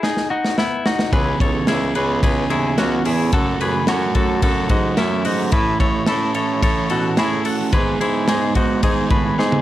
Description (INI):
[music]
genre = jangly indie pop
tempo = 109 BPM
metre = 4/4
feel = straight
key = C# minor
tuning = A4 = 440 Hz
[part]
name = twelve-string electric guitar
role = arpeggios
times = 0.0-9.6 s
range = B3 to C#5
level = -22 LUFS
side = left 3 dB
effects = plate reverb
[part]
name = modern studio drum kit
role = drums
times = 0.0-9.6 s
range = hi-hat, kick drum, ride cymbal, snare drum, toms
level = -21 LUFS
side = equal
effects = none
[part]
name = crunchy overdriven guitar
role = accompaniment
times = 1.1-9.6 s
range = F#2 to A4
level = -21 LUFS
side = right 5 dB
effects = none
[part]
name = warm baritone saxophone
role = bass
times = 1.1-9.6 s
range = C#2 to B2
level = -23 LUFS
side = equal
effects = none
[sound]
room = light reverb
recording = dark, warm production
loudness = -16 LUFS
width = side -14 dB against mid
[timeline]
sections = 0.0-9.6 A section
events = drum fill 0.0-1.1, 9.4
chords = 0.0 G#m; 1.1 C#m7; 3.3 F#m; 5.5 A; 7.7 G#m